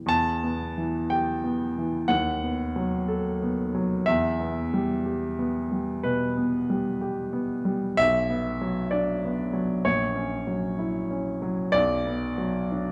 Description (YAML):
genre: classical, romantic nocturne for solo piano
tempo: 62 BPM (dotted quarters)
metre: 12/8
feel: uneven beats, rubato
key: unclear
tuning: A4 = 439 Hz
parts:
  - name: warm baby grand piano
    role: solo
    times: 0.0-12.9 s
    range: A#1 to A5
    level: -26 LUFS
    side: equal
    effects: none
room: moderate concert hall reverb, RT60 2.4 s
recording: close, detailed microphones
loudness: -27 LUFS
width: mono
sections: 0.1-12.9 A section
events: none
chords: 0.1 Em; 2.1 B7/D#; 4.1 Em; 8.0 Bm; 9.9 F#7/A#; 11.7 Bm